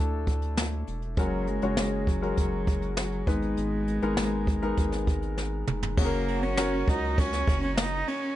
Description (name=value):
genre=piano-driven pop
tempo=100 BPM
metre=4/4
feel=straight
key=F# major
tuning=A4 = 440 Hz
part: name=clear concert grand piano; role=accompaniment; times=0.0-8.4 s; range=G#2 to D5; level=-32 LUFS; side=left 4 dB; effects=none
part: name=round analog bass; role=bass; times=0.0-8.0 s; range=E1 to D2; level=-32 LUFS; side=equal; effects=none
part: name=jazz brush drum kit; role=drums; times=0.3-8.4 s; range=crash cymbal, hi-hat, kick drum, ride cymbal, snare drum, toms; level=-28 LUFS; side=equal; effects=none
part: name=warm cello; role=melody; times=1.2-8.4 s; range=F#3 to D#4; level=-31 LUFS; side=right 1 dB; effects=none
part: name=dark French horn section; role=second line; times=6.0-8.0 s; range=F#3 to F#4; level=-37 LUFS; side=right 3 dB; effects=none
room=light reverb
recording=nothing above 11.0 kHz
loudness=-25 LUFS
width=side -13 dB against mid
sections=0.0-6.0 A section; 6.0-8.4 B section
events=drum fill 5.4-6.0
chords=0.0 Dsus2; 1.2 F#add9; 3.3 G#m; 6.0 F#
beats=0.57 | 1.18 1.77 2.38 2.98 | 3.58 4.17 4.78 5.38 | 5.97 6.57 7.17 7.77